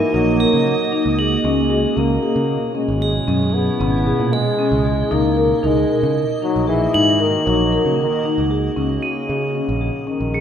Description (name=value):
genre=contemporary instrumental, chamber music in an uneven meter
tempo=229 BPM (eighths)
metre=7/8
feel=straight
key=C# dorian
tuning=A4 = 439 Hz
part: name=warm French horn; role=second line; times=0.0-10.4 s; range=C#3 to B3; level=-23 LUFS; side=left 1 dB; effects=none
part: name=granular cloud pad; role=sustained chords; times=0.0-8.7 s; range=B2 to D#5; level=-24 LUFS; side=right 4 dB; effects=built-in reverb
part: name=marimba with medium mallets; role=arpeggios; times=0.0-10.4 s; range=C#4 to A#4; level=-20 LUFS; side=left 3 dB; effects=none
part: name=crotales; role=texture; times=0.0-10.4 s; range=C#7 to B7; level=-25 LUFS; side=right 1 dB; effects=none
part: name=picked electric bass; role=bass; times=0.1-10.4 s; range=G#1 to C#3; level=-22 LUFS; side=right 2 dB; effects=none
room=moderate recital hall reverb, RT60 1.7 s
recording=none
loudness=-16 LUFS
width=side -8 dB against mid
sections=0.0-8.8 A section; 8.8-10.4 B section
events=none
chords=0.0 D#m; 1.4 C#m7; 5.1 D#m; 8.8 C#sus2